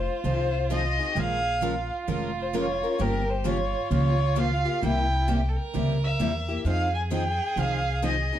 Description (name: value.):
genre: acoustic string swing (jazz manouche).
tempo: 131 BPM.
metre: 4/4.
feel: swing 64% on 8ths.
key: F minor.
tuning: A4 = 441 Hz.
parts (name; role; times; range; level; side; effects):
dark violin; melody; 0.0-8.4 s; Bb4 to Ab5; -28 LUFS; equal; none.
warm violin; second line; 0.0-8.4 s; E4 to Bb4; -34 LUFS; right 5 dB; none.
upright bass; bass; 0.0-8.3 s; F1 to F2; -27 LUFS; equal; none.
picked steel-string acoustic guitar; accompaniment; 0.2-8.4 s; C3 to Bb4; -31 LUFS; left 4 dB; none.
picked steel-string acoustic guitar; accompaniment; 0.2-8.1 s; C3 to Bb4; -33 LUFS; right 7 dB; none.
room: light reverb.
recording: dark, warm production.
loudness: -23 LUFS.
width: side -11 dB against mid.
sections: 0.0-8.4 A section.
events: none.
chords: 0.0 Fm7; 1.2 Bbm7; 3.0 Gm7b5; 4.8 C7; 6.7 Fm7.